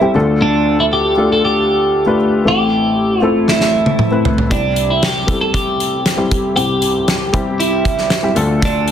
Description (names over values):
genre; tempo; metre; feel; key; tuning
piano-driven pop; 117 BPM; 4/4; straight; C major; A4 = 440 Hz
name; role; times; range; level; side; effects
twelve-string electric guitar; melody; 0.0-8.9 s; D4 to A4; -16 LUFS; right 1 dB; plate reverb
dark upright piano; accompaniment; 0.0-8.9 s; A1 to B4; -16 LUFS; left 2 dB; plate reverb
loose indie drum kit; drums; 3.5-8.9 s; hi-hat, kick drum, snare drum, toms; -18 LUFS; equal; none
room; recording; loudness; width
wet studio reverb, RT60 0.8 s; dense, heavily limited modern master; -12 LUFS; side -9 dB against mid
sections
0.0-8.9 A section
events
drum fill 3.5-4.5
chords
0.1 Dm; 2.5 Am; 4.5 C; 8.4 Dm